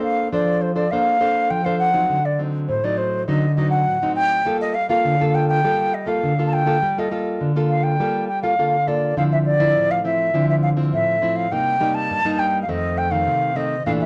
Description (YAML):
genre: samba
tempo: 102 BPM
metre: 4/4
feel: straight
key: G minor, D minor from 9.2 s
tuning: A4 = 440 Hz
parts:
  - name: wooden flute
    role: melody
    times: 0.0-14.1 s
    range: C5 to A5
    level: -22 LUFS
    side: equal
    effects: none
  - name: nylon-string guitar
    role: accompaniment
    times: 0.0-14.1 s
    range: F2 to C5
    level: -23 LUFS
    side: equal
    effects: none
room: wet club reverb, RT60 0.6 s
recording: none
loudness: -20 LUFS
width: mono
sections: 0.0-9.2 A section; 9.2-14.1 B section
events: none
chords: 0.0 Bbmaj9; 2.1 D7b9; 4.5 Gm9; 9.2 Dm9; 11.5 Cm7; 12.7 F7